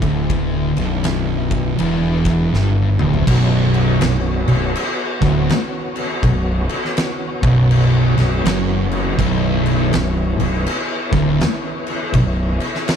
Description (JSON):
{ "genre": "stoner and doom metal", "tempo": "81 BPM", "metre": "4/4", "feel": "swing 63% on 8ths", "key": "B minor", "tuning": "A4 = 440 Hz", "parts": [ { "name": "tonewheel organ", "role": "sustained chords", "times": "0.0-13.0 s", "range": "D3 to C#5", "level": "-28 LUFS", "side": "equal", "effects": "slow rotary speaker, chorus vibrato" }, { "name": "thick fuzz guitar", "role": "riff", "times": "0.0-12.5 s", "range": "B1 to G2", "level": "-19 LUFS", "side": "left 7 dB", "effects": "distortion" }, { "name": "thick fuzz guitar", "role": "riff", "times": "0.0-12.5 s", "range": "B1 to G2", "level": "-19 LUFS", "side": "right 8 dB", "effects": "distortion" }, { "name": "fuzz fingered electric bass", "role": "bass", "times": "0.0-12.6 s", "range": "B0 to G1", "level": "-22 LUFS", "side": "equal", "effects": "overdrive" }, { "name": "oversized low-tuned drum kit", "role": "drums", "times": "0.0-13.0 s", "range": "crash cymbal, kick drum, ride cymbal, snare drum, toms", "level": "-22 LUFS", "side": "equal", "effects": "none" } ], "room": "little or no reverb", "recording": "none", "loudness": "-15 LUFS", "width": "side -8 dB against mid", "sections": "0.0-3.3 A section; 3.3-13.0 B section", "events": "drum fill 2.5-3.3", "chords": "0.0 D5; 3.3 Bm", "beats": "| 0.30 1.05 1.79 2.53 | 3.27 4.02 4.76 5.50 | 6.24 6.98 7.72 8.46 | 9.20 9.94 10.68 11.42 | 12.16 12.90" }